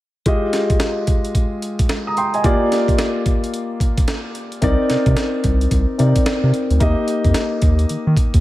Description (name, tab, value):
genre	R&B, new jack swing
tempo	110 BPM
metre	4/4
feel	swing 62% on 16ths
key	unclear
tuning	A4 = 440 Hz
part	dark grand piano	accompaniment	0.3-8.4 s	Ab3 to Eb6	-19 LUFS	left 1 dB	none
part	breakbeat sampler-style drum kit	drums	0.3-8.4 s	hi-hat, kick drum, snare drum	-19 LUFS	equal	none
part	round analog bass	bass	4.6-8.4 s	C2 to Eb3	-16 LUFS	equal	none
room	moderate plate reverb, RT60 1.9 s, digital ambience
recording	dreamy mix soaked in reverb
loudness	-15 LUFS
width	side -16 dB against mid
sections	0.3-8.4 A section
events	none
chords	0.3 Fm9; 2.4 Gm7; 4.6 Cm9; 6.8 Eb